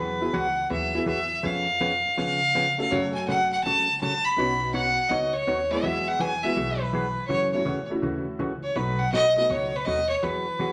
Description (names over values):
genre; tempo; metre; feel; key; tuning
country; 164 BPM; 4/4; swing 66% on 8ths; E major; A4 = 444 Hz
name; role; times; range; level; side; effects
clear fiddle; melody; 0.0-10.7 s; B4 to B5; -26 LUFS; equal; none
hollow-body jazz guitar; accompaniment; 0.0-10.7 s; B2 to C#5; -33 LUFS; equal; none
upright bass; bass; 0.0-10.7 s; B1 to C#3; -38 LUFS; equal; none
honky-tonk upright piano; accompaniment; 0.2-9.5 s; G#3 to A4; -33 LUFS; equal; none
room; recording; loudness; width
wet large studio reverb, RT60 1.1 s; none; -25 LUFS; mono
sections
0.0-10.7 A section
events
none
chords
0.0 Eadd9; 1.4 C#7/E#; 2.9 F#m; 4.4 Badd9; 5.8 Eadd9; 7.3 F#m7; 8.8 B7